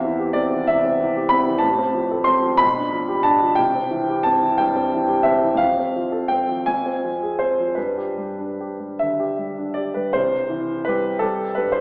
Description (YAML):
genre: classical, romantic character piece for solo piano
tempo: 46-64 BPM (dotted quarters)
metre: 6/8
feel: rubato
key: C major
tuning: A4 = 440 Hz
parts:
  - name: warm grand piano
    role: solo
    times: 0.0-11.8 s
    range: A1 to C6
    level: -18 LUFS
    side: equal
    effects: none
room: wet concert hall reverb, RT60 2.3 s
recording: heard from further back in the room, AM radio sound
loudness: -18 LUFS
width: side -30 dB against mid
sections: 0.0-10.2 A section; 10.2-11.8 B section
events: none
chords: 0.0 C/E; 1.6 F/A; 2.6 G7/B; 3.6 C; 5.6 F; 6.7 Fm; 7.8 G; 10.2 C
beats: 0.69 | 1.64 2.61 | 3.58 4.59 | 5.60 6.66 | 7.76 9.01 | 10.15 11.23